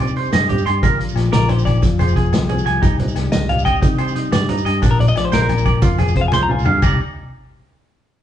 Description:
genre	highlife guitar band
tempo	120 BPM (dotted quarters)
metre	12/8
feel	straight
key	C minor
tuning	A4 = 440 Hz
part	flamenco guitar	accompaniment	0.0-7.0 s	G2 to Ab4	-23 LUFS	left 4 dB	none
part	clean electric guitar	arpeggios	0.0-7.0 s	D4 to C6	-22 LUFS	right 5 dB	none
part	fingered electric bass	bass	0.0-7.0 s	F1 to C3	-20 LUFS	equal	none
part	congas	percussion	0.0-7.0 s	none	-25 LUFS	right 1 dB	none
part	shekere	percussion	0.0-7.0 s	none	-28 LUFS	right 6 dB	none
part	vintage drum kit	drums	0.2-6.9 s	crash cymbal, hi-hat, kick drum, snare drum, toms	-20 LUFS	equal	none
part	agogo bells	percussion	0.3-6.9 s	none	-31 LUFS	left 7 dB	none
part	clean electric guitar	melody	1.3-6.6 s	Bb4 to C6	-21 LUFS	left 3 dB	none
room	moderate large studio reverb, RT60 1.0 s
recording	band playing live in one room, cassette tape, nothing above 10.5 kHz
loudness	-14 LUFS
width	side -11 dB against mid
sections	0.0-6.8 A section; 6.8-8.2 B section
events	clean electric guitar solo 0.0-6.8; drum fill 6.3-6.8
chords	0.0 Cmadd9; 0.8 Bbadd9; 1.8 Fm; 2.8 Cmadd9; 4.8 Bbadd9; 5.8 Fm; 6.8 Cmadd9

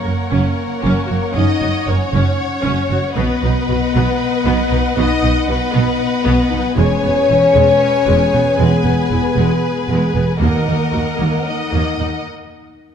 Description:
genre	cinematic, epic orchestral film score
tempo	231 BPM (eighths)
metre	7/8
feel	straight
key	Eb phrygian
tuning	A4 = 441 Hz
part	rich studio violin section	melody	0.0-12.3 s	Bb4 to Eb5	-25 LUFS	left 2 dB	none
part	warm symphonic violin section	second line	0.0-12.2 s	B4 to G#5	-25 LUFS	left 1 dB	none
part	clear symphonic viola section	accompaniment	0.0-12.2 s	G#3 to Db5	-23 LUFS	right 2 dB	none
part	mellow French horn section	sustained chords	0.0-12.3 s	Bb3 to Eb4	-18 LUFS	left 5 dB	none
part	clear symphonic cello section	bass	0.1-12.1 s	Eb2 to B2	-21 LUFS	right 3 dB	none
part	rich symphonic double bass section	bass	0.1-12.1 s	E1 to Eb2	-19 LUFS	right 3 dB	none
part	timpani	percussion	10.4-11.2 s	Eb3	-22 LUFS	right 1 dB	none
room	wet scoring stage reverb, RT60 1.9 s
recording	dark, warm production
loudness	-13 LUFS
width	side -8 dB against mid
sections	0.0-12.9 A section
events	break 12.3-12.9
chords	0.0 Gb; 3.2 B; 6.8 E; 10.4 Ebm; 12.3 N.C.

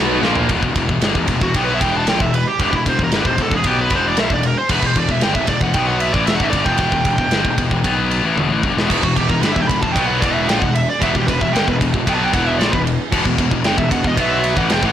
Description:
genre	heavy metal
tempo	114 BPM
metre	4/4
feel	straight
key	E minor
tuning	A4 = 440 Hz
part	overdriven electric guitar	riff	0.0-0.5, 8.9-14.9 s	E2 to B3	-23 LUFS	right 3 dB	none
part	scooped high-gain guitar	riff	0.0-14.9 s	E2 to B3	-19 LUFS	left 5 dB	distortion
part	sludgy distorted guitar	riff	0.0-0.5 s	A#2 to B3	-25 LUFS	right 13 dB	overdrive
part	fuzz picked electric bass	bass	0.0-14.9 s	E1 to B1	-22 LUFS	equal	overdrive
part	tight metal drum kit	drums	0.2-14.9 s	crash cymbal, kick drum, ride cymbal, snare drum, toms	-20 LUFS	equal	soft clipping on kick
part	smooth overdriven lead guitar	melody	1.4-14.9 s	E4 to B5	-21 LUFS	right 3 dB	none
room	little or no reverb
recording	blown-out, overdriven recording, overdrive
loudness	-14 LUFS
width	side -10 dB against mid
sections	0.5-14.9 A section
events	drum fill 0.2, 8.4-8.9; lead electric guitar solo 0.5-14.9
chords	0.2 A#5; 0.5 Em

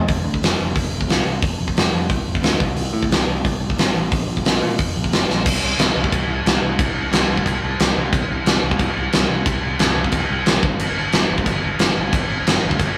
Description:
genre	punk rock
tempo	180 BPM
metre	4/4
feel	straight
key	unclear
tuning	A4 = 440 Hz
part	modern bright picked electric bass	bass	0.0-12.9 s	F1 to Bb2	-27 LUFS	equal	none
part	big rock drum kit	drums	0.1-12.9 s	crash cymbal, hi-hat, kick drum, snare drum	-20 LUFS	equal	none
room	little or no reverb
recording	rough rehearsal-room recording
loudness	-19 LUFS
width	mono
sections	0.0-5.5 A section; 5.5-13.0 B section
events	drum fill 5.3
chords	none

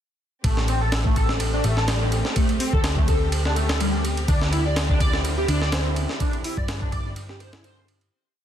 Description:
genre	breakbeat, breaks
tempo	125 BPM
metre	4/4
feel	swing 54% on 16ths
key	A minor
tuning	A4 = 440 Hz
part	dark studio string section	sustained chords	0.4-8.1 s	D3 to G4	-32 LUFS	equal	sidechain pumping
part	overdriven synth lead	riff	0.4-7.8 s	G3 to D5	-27 LUFS	equal	distortion, phaser, ensemble chorus, ping-pong delay
part	hollow-body short-scale picked electric bass	bass	0.4-8.1 s	A1 to G2	-24 LUFS	equal	none
part	breakbeat sampler-style drum kit	drums	0.4-8.1 s	hi-hat, kick drum, ride cymbal, snare drum	-24 LUFS	equal	none
room	light reverb, digital ambience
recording	dense, heavily limited modern master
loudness	-20 LUFS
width	side -10 dB against mid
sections	0.4-8.1 drop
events	drop 0.4-8.1; fade-out 5.6-8.1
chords	0.4 Am7; 4.3 D9sus4

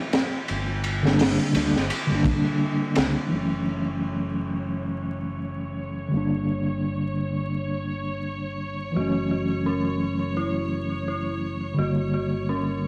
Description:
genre	trip hop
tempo	85 BPM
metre	4/4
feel	swing 58% on 16ths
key	unclear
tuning	A4 = 440 Hz
part	crunchy breakbeat drum kit	drums	0.1-3.2 s	hi-hat, kick drum, ride cymbal, snare drum	-29 LUFS	equal	cassette tape
part	fingered electric bass	bass	0.5-12.9 s	F#1 to D2	-35 LUFS	equal	none
part	mellow tine electric piano	accompaniment	1.0-12.9 s	D3 to D4	-28 LUFS	equal	tremolo, cassette tape, tape echo
part	bright symphonic string section	sustained chords	3.3-12.9 s	C#5	-39 LUFS	equal	low-pass filter, cassette tape
part	dark detuned synth bell	arpeggios	9.0-12.9 s	C#4 to F#4	-32 LUFS	equal	chorus, cassette tape, tape echo
room	light reverb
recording	home recording on cassette, vinyl crackle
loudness	-26 LUFS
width	mono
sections	0.0-3.3 A section; 3.3-12.9 B section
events	filter sweep on string section 3.3-12.9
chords	0.5 Gm; 3.3 F#m7; 6.1 Gm; 9.0 F#m7; 11.8 Gm

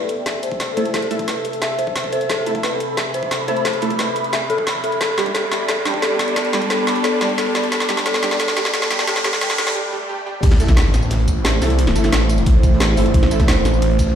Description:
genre	dark technical drum and bass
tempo	177 BPM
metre	4/4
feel	straight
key	A minor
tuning	A4 = 440 Hz
part	deep dark ambient pad	sustained chords	0.0-14.2 s	A3 to E5	-26 LUFS	right 1 dB	chorus, built-in reverb, sidechain pumping
part	riser, swell and impact	sound effects	0.4-11.8 s	none	-27 LUFS	equal	none
part	airy breathy pad	texture	0.0-9.8 s	G4 to B5	-25 LUFS	right 1 dB	chorus, phaser, sidechain pumping
part	drum and bass drum kit	drums	0.1-14.1 s	crash cymbal, hi-hat, snare drum, tambourine	-22 LUFS	equal	overdrive, high-pass filter on hats, studio reverb, high-pass filter on snare, high-pass filter on cymbals, high-pass filter on perc
part	dark detuned synth bell	arpeggios	0.3-9.6 s	A4 to E5	-24 LUFS	left 3 dB	chorus, sidechain pumping, low-pass filter, tape echo
part	electronic kick drum	drums	0.3-14.1 s	none	-18 LUFS	equal	overdrive, high-pass filter on kick, studio reverb
part	orchestra-hit-like synth stab	stabs	0.8-13.4 s	G3 to A4	-26 LUFS	right 2 dB	built-in reverb, cassette tape, tape echo
part	snarling distorted saw bass	bass	10.4-14.2 s	G1 to C2	-17 LUFS	equal	distortion, tube saturation
part	crunchy breakbeat drum kit	drums	10.4-14.2 s	hi-hat, snare drum	-34 LUFS	equal	none
room	moderate lush hall reverb, RT60 2.1 s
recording	played on a big sound system in a bare room, stone room reverb, high-pass filter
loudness	-16 LUFS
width	side -9 dB against mid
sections	0.0-10.4 A section; 10.4-14.2 B section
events	build-up 0.0-10.4; drum fill 0.0-9.8; filter sweep 0.0-10.4; riser 0.4-9.8; break 9.8-10.4; swell 9.8-10.4; drop 10.4-14.2; impact 10.4-11.8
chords	0.0 Am; 5.0 G; 10.4 Am

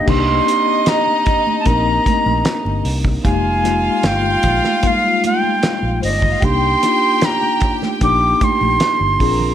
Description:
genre	lush 1970s-style soul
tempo	76 BPM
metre	4/4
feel	straight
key	C minor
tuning	A4 = 441 Hz
part	breathy bright concert flute	melody	0.0-9.5 s	Eb5 to D6	-17 LUFS	right 2 dB	none
part	mellow tine electric piano	accompaniment	0.0-9.5 s	G3 to Bb4	-21 LUFS	left 4 dB	medium stereo tremolo
part	rich chamber string section	second line	0.1-9.5 s	C4 to Bb5	-23 LUFS	equal	tape echo
part	vintage muted fingered electric bass	bass	0.1-9.5 s	F1 to C2	-20 LUFS	equal	none
part	cloth-damped thuddy drum kit	drums	0.1-9.4 s	crash cymbal, hi-hat, kick drum, snare drum	-20 LUFS	equal	none
part	congas	percussion	0.1-9.5 s	none	-27 LUFS	right 8 dB	none
room	light reverb, studio ambience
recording	none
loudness	-13 LUFS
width	side -10 dB against mid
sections	0.1-9.5 A section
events	none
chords	0.1 Cm9; 3.3 Fm11; 6.4 Cm9

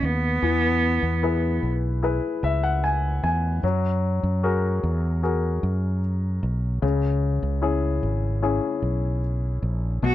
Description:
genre	pop ballad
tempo	75 BPM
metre	4/4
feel	straight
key	unclear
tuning	A4 = 441 Hz
part	warm cello	melody	0.0-1.6, 10.1 s	B3 to F#4	-24 LUFS	right 2 dB	none
part	clear baby grand piano	accompaniment	0.0-10.1 s	B2 to G#5	-26 LUFS	left 4 dB	none
part	fretless electric bass	bass	0.0-10.1 s	G#1 to F#2	-24 LUFS	equal	none
room	little or no reverb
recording	dry, close 1970s-style studio recording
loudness	-21 LUFS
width	side -13 dB against mid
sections	0.0-10.1 A section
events	grand piano fill 2.0-3.6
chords	0.4 E; 3.6 F#add9; 6.8 C#m

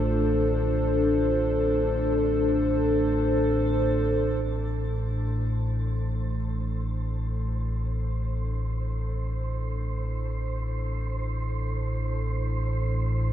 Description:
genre	dark ambient drone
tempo	free time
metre	none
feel	none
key	A minor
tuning	A4 = 442 Hz
part	dark analog pad	sustained chords	0.0-13.3 s	A3 to C5	-27 LUFS	left 1 dB	chorus, shimmer reverb
part	deep rumbling drone	drone	0.0-13.3 s	A1 to A2	-27 LUFS	equal	built-in reverb
part	clear baby grand piano	arpeggios	4.5-13.3 s	none	barely audible	none	none
part	wind-like tuned noise texture	texture	5.0-13.3 s	C5	-41 LUFS	right 6 dB	built-in reverb, shimmer reverb
room	moderate huge ambient reverb, RT60 8.1 s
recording	none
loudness	-24 LUFS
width	side -10 dB against mid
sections	0.0-4.5 A section; 4.5-13.3 B section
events	fade-in on analog synth pad 4.5-13.3; fade-in on synth texture 4.5-13.3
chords	0.0 F/A; 4.5 Am

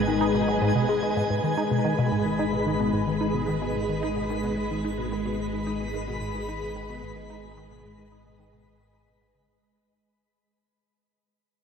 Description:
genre	ambient, sequencer-driven space music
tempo	110 BPM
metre	4/4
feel	straight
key	G# minor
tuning	A4 = 442 Hz
part	phased string machine	sustained chords	0.0-10.0 s	G#3 to D#5	-28 LUFS	left 1 dB	ensemble chorus, phaser, shimmer reverb
part	tight sequenced synth	riff	0.0-10.0 s	G#2 to D#4	-28 LUFS	left 1 dB	chorus, phaser, ping-pong delay, shimmer reverb
part	analog drone	bass	0.0-10.0 s	G#1	-36 LUFS	equal	chorus
part	twinkling granular texture	texture	0.0-10.0 s	G#5 to B5	-34 LUFS	right 1 dB	built-in reverb, shimmer reverb
room	wet huge ambient reverb, RT60 8.2 s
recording	dark, warm production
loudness	-24 LUFS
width	side -6 dB against mid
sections	0.0-1.3 A section; 1.3-10.0 B section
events	fade-out on synth arpeggio sound 1.3-10.0; fade-out 1.3-10.0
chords	0.0 G#m

